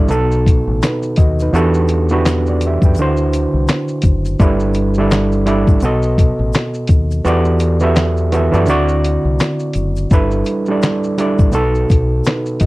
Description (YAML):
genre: lo-fi hip hop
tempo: 84 BPM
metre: 4/4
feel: swing 59% on 16ths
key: G major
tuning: A4 = 440 Hz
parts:
  - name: overdriven reed electric piano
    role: accompaniment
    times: 0.0-12.7 s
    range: B2 to G5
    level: -16 LUFS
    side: right 2 dB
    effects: cassette tape
  - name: deep dub fingered electric bass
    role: bass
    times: 0.0-12.7 s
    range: F#1 to F#2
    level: -17 LUFS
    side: left 1 dB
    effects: none
  - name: dusty soul sampler-style drum kit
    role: drums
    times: 0.1-12.7 s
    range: handclaps, hi-hat, kick drum, shaker, snare drum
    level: -14 LUFS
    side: left 1 dB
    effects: vintage 12-bit sampler grit
  - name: egg shaker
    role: percussion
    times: 0.1-12.7 s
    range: none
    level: -41 LUFS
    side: left 11 dB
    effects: none
room: light reverb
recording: cassette tape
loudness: -12 LUFS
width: side -19 dB against mid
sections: 0.0-10.1 A section; 10.1-12.7 B section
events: kick muted 7.3-10.1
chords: 0.1 B7; 1.5 Em11; 3.0 D9; 4.4 G69; 5.8 B7; 7.3 Em11; 8.7 D9; 10.1 G69; 11.5 B7